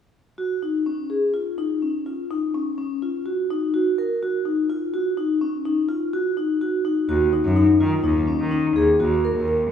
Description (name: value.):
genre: contemporary instrumental, chamber music in an uneven meter.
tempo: 125 BPM.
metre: 7/4.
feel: straight.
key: Eb minor.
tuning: A4 = 440 Hz.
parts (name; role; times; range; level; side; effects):
vibraphone with medium mallets; arpeggios; 0.4-9.7 s; Db4 to Bb4; -20 LUFS; left 1 dB; none.
rich cello; bass; 7.1-9.6 s; Eb2 to Eb3; -23 LUFS; left 1 dB; none.
room: wet recital hall reverb, RT60 1.6 s.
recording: heard from further back in the room, small room ambience.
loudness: -20 LUFS.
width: side -8 dB against mid.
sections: 0.4-7.1 A section; 7.1-9.7 B section.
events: none.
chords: 0.4 Ebm7; 3.7 Dbadd9 (rootless); 7.1 Ebm.